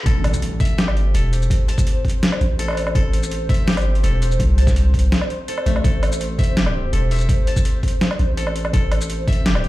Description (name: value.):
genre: half-time drum and bass.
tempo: 166 BPM.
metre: 4/4.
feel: half-time.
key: A minor.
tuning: A4 = 440 Hz.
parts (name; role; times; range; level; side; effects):
koto; arpeggios; 0.0-9.7 s; A3 to A5; -30 LUFS; left 4 dB; digital delay.
long sustained 808-style bass; bass; 0.1-9.7 s; E1 to C2; -19 LUFS; equal; none.
boom bap sampler-style drum kit; drums; 0.1-9.7 s; hi-hat, shaker, snare drum, woodblock; -24 LUFS; equal; overdrive.
electronic kick drum; drums; 0.1-9.4 s; none; -18 LUFS; equal; overdrive.
impact; sound effects; 0.1-1.5 s; none; -29 LUFS; equal; none.
dark analog pad; sustained chords; 1.0-9.7 s; C5; -28 LUFS; left 1 dB; chorus, sidechain pumping.
room: light reverb.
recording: played on a big sound system in a bare room, large studio reverb, high-pass filter.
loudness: -16 LUFS.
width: side -17 dB against mid.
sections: 0.1-9.7 A section.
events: drop 0.1-9.7; impact 0.1-1.5.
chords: 0.1 Am.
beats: | 0.06 0.42 0.78 1.14 | 1.51 1.87 2.23 2.59 | 2.95 3.31 3.67 4.04 | 4.40 4.76 5.12 5.48 | 5.84 6.21 6.57 6.93 | 7.29 7.65 8.01 8.37 | 8.73 9.10 9.46.